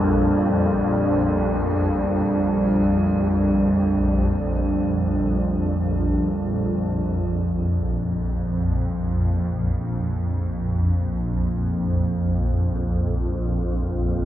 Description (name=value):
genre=dark ambient drone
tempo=free time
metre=none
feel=none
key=unclear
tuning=A4 = 440 Hz
part: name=deep dark ambient pad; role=sustained chords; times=0.0-14.2 s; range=G3 to C5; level=-24 LUFS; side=equal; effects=chorus, built-in reverb
part: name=swarming drone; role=drone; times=0.0-14.2 s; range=Bb1 to F2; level=-22 LUFS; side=equal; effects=built-in reverb
part: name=metallic inharmonic drone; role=texture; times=0.0-7.0 s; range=D4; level=-32 LUFS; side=right 2 dB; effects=chorus, built-in reverb
room=wet cathedral reverb, RT60 6.5 s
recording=nothing above 7.9 kHz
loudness=-20 LUFS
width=side -12 dB against mid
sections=0.0-7.0 A section; 7.0-14.2 B section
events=none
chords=0.0 Gm; 7.0 Bb5